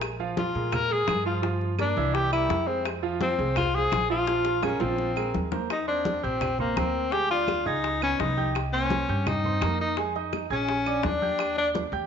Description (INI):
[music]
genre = Afro-Cuban jazz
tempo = 169 BPM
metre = 4/4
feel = straight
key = Eb major from 5.7 s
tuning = A4 = 440 Hz
[part]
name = clear grand piano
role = accompaniment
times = 0.0-12.1 s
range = Fb3 to Ab6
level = -31 LUFS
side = right 8 dB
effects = none
[part]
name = upright bass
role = bass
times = 0.0-12.1 s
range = Bb1 to Bb2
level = -32 LUFS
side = equal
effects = none
[part]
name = bongos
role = percussion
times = 0.0-11.9 s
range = none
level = -35 LUFS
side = left 10 dB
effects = none
[part]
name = claves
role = percussion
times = 0.0-11.6 s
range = none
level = -39 LUFS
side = right 12 dB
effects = none
[part]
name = congas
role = percussion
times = 0.0-12.1 s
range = none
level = -35 LUFS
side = right 1 dB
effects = none
[part]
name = breathy tenor saxophone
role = melody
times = 0.4-11.7 s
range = Bb3 to Bb4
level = -26 LUFS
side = left 3 dB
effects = none
[sound]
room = wet echo chamber reverb, RT60 1.4 s, small room reverb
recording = 1960s-style stereo with parts hard left and right, nothing above 7.9 kHz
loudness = -24 LUFS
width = side -7 dB against mid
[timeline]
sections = 0.0-5.7 A section; 5.7-12.1 B section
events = drum fill 4.3-5.7; tenor saxophone solo 5.7-12.1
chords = 0.0 Bb5; 1.4 Gm7; 2.1 C7; 2.9 Fm; 4.3 Bb5; 5.0 Bbsus2; 5.7 Eb6; 7.1 Ddim; 7.8 Dbsus2; 8.6 Cm7; 10.0 Fm7; 10.7 Bb7; 11.4 Ebmaj7